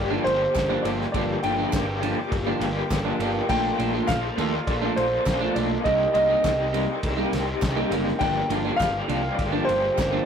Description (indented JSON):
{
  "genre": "indie rock",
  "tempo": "102 BPM",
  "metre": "4/4",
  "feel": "straight",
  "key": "G minor",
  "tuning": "A4 = 442 Hz",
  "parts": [
    { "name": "warm upright piano", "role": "melody", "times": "0.0-10.3 s", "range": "C5 to G5", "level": "-25 LUFS", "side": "equal", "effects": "none" },
    { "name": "brassy analog pad", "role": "sustained chords", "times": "0.0-10.3 s", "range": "Eb4 to D6", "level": "-38 LUFS", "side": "right 4 dB", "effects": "none" },
    { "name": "raw garage guitar", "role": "riff", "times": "0.0-10.3 s", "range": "G2 to G4", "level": "-29 LUFS", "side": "left 4 dB", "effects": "overdrive, tremolo" },
    { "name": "fuzz picked electric bass", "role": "bass", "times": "0.0-10.2 s", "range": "F#1 to Eb2", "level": "-30 LUFS", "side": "equal", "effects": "overdrive" },
    { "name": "electric guitar through a small old amp", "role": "riff", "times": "0.1-10.3 s", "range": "Bb2 to Eb4", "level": "-26 LUFS", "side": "right 2 dB", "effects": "none" },
    { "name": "cloth-damped thuddy drum kit", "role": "drums", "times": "0.3-10.1 s", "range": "crash cymbal, kick drum, ride cymbal, snare drum", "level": "-31 LUFS", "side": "equal", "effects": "none" },
    { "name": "group handclap", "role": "percussion", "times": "0.6-10.1 s", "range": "none", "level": "-38 LUFS", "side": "right 3 dB", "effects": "none" }
  ],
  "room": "moderate studio ambience, RT60 0.5 s",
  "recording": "rough rehearsal-room recording, warm saturation",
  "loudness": "-21 LUFS",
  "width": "side -7 dB against mid",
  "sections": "0.0-10.3 A section",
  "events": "none",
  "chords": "0.0 Gm7; 3.5 Bbmaj7; 5.8 Cm7; 8.2 Gm7"
}